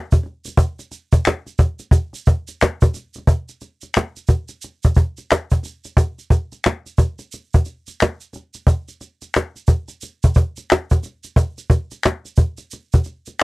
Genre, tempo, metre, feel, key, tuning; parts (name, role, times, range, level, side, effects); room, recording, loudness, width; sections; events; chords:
R&B; 89 BPM; 4/4; swing 63% on 16ths
cajon; drums; 0.1-13.3 s; -14 LUFS; equal
egg shaker and finger snaps; percussion; 0.1-13.4 s; -28 LUFS; left 4 dB
light reverb; dry, close 1970s-style studio recording; -17 LUFS; side -22 dB against mid
0.0-3.3 A section; 3.3-13.4 B section